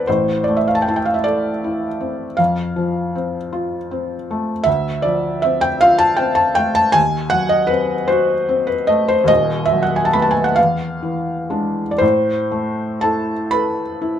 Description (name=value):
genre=classical, romantic nocturne for solo piano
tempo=38-54 BPM (dotted quarters)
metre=12/8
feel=rubato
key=A minor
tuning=A4 = 439 Hz
part: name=felt-muted upright piano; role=solo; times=0.0-14.2 s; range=D#1 to B5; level=-15 LUFS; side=equal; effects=none
room=light reverb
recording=minimal, uncompressed stereo recording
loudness=-15 LUFS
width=side -9 dB against mid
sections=0.0-14.2 A section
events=none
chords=0.1 Am; 2.4 F; 4.7 Dm7; 7.0 D#dim7; 9.3 B7/D#; 10.6 E7b9; 12.0 Am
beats=| 0.07 1.26 2.39 3.52 | 4.67 5.81 6.96 8.09 | 9.29 10.57 12.02 13.53